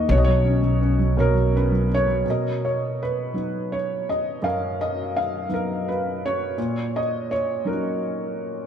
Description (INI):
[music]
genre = acoustic folk-pop ballad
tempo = 56 BPM (dotted quarters)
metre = 6/8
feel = straight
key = unclear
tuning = A4 = 442 Hz
[part]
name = felt-muted upright piano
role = melody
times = 0.0-8.7 s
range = F#2 to F5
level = -22 LUFS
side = equal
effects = lush chorus
[part]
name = upright bass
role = bass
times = 0.0-2.2 s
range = B1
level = -21 LUFS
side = equal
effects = none
[sound]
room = moderate plate reverb, RT60 3.4 s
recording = dreamy mix soaked in reverb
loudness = -21 LUFS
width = side -8 dB against mid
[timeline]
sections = 0.0-2.2 A section; 2.2-8.7 B section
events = none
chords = 0.1 Bsus2; 2.2 Bmaj7; 6.6 Ebm7/Bb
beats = | 0.08 1.16 | 2.25 3.34 | 4.42 5.50 | 6.57 7.65